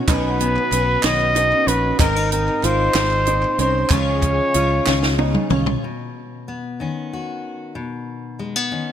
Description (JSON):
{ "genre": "indie folk with a building arrangement", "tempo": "62 BPM (dotted quarters)", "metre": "6/8", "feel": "straight", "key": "unclear", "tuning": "A4 = 437 Hz", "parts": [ { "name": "fingerpicked steel-string acoustic guitar", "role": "accompaniment", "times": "0.0-8.9 s", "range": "Ab2 to Gb4", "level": "-27 LUFS", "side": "left 3 dB", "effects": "none" }, { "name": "picked twelve-string acoustic guitar", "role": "accompaniment", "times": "0.0-5.8 s", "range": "Cb3 to Bb4", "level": "-27 LUFS", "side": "left 6 dB", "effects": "ensemble chorus" }, { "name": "warm upright piano", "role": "arpeggios", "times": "0.0-5.8 s", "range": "Db4 to F4", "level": "-26 LUFS", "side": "right 8 dB", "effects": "digital delay" }, { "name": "dark trumpet", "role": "melody", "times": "0.1-5.5 s", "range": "Bb4 to Eb5", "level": "-20 LUFS", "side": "equal", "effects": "digital delay" }, { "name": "fingered electric bass", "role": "bass", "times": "0.1-5.7 s", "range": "Ab1 to Db2", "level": "-22 LUFS", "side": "equal", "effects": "none" }, { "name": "compact cocktail drum kit", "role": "drums", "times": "0.1-5.8 s", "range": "hi-hat, kick drum, snare drum, toms", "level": "-21 LUFS", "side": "equal", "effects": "none" }, { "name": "group handclap", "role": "percussion", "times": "0.1-5.1 s", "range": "none", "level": "-28 LUFS", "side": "right 8 dB", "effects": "none" } ], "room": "light reverb, small room ambience", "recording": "bright 1980s-style digital production", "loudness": "-16 LUFS", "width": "side -10 dB against mid", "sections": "0.0-5.8 A section; 5.8-8.9 B section", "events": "drum fill 4.9-5.8", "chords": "0.0 Cbadd9; 2.0 Abadd9; 3.9 Db; 5.8 Cbadd9", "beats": "| 0.08 1.03 | 1.99 2.95 | 3.91 4.87 | 5.83 6.79 | 7.75 8.71" }